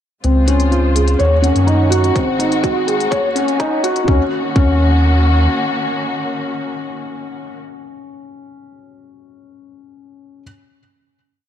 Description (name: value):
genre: piano and strings electronica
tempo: 125 BPM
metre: 4/4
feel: straight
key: Eb dorian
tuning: A4 = 440 Hz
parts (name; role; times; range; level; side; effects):
- muted studio string section; sustained chords; 0.2-7.6 s; Db3 to C5; -22 LUFS; left 2 dB; sidechain pumping
- felt-muted upright piano; riff; 0.2-10.4 s; C4 to Db5; -18 LUFS; left 1 dB; tape echo
- warm sub bass; bass; 0.2-5.5 s; Ab1 to Gb2; -15 LUFS; equal; sidechain pumping
- electronic hi-hat; drums; 0.2-4.1 s; none; -26 LUFS; left 4 dB; none
- electronic kick drum; drums; 2.2-4.7 s; none; -17 LUFS; equal; none
room: moderate lush hall reverb, RT60 1.9 s, small room ambience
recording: dark, warm production, high-pass filter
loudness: -13 LUFS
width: side -10 dB against mid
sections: 0.2-4.1 build; 4.1-7.9 final chord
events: build-up 0.2-4.1; filter sweep 0.2-4.1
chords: 0.2 Dbmaj7; 1.2 Ebm7; 2.2 Ab7; 3.1 Ebm7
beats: | 0.24 0.72 1.20 1.68 | 2.16 2.64 3.12 3.60 | 4.08 4.56 5.04 5.52 | 6.00 6.48 6.96 7.44